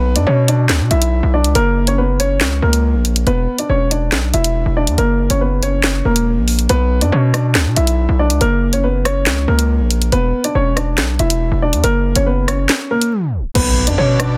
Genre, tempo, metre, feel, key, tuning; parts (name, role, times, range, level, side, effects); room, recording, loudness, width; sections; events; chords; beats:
hip hop, drill; 140 BPM; 4/4; half-time; B harmonic minor; A4 = 440 Hz
dark grand piano; melody; 0.0-14.4 s; A#3 to E5; -20 LUFS; equal
distorted 808-style bass; bass; 0.0-14.4 s; E1 to B2; -18 LUFS; equal; distortion
drill drum kit; drums; 0.2-14.3 s; crash cymbal, handclaps, hi-hat, rim click, snare drum; -20 LUFS; equal
glassy FM pad; sustained chords; 13.9-14.4 s; B4 to D6; -31 LUFS; equal; ensemble chorus, built-in reverb
impact; sound effects; 13.6-14.4 s; -24 LUFS; equal
digital ambience; dense, heavily limited modern master, tape stop; -15 LUFS; mono
0.0-13.6 A section
kick muted 12.7-13.6; tape stop 13.1-13.6; impact 13.6-14.4
0.0 Bm; 1.6 F#; 3.3 E5; 5.0 F#; 6.7 Bm; 8.4 F#; 10.1 E5; 11.8 F#; 13.6 Bm
0.27 0.69 1.12 | 1.55 1.98 2.41 2.84 | 3.27 3.69 4.12 4.55 | 4.98 5.41 5.84 6.27 | 6.70 7.12 7.55 7.98 | 8.41 8.84 9.27 9.70 | 10.12 10.55 10.98 11.41 | 11.84 12.27 12.70 13.12 | 13.55 13.98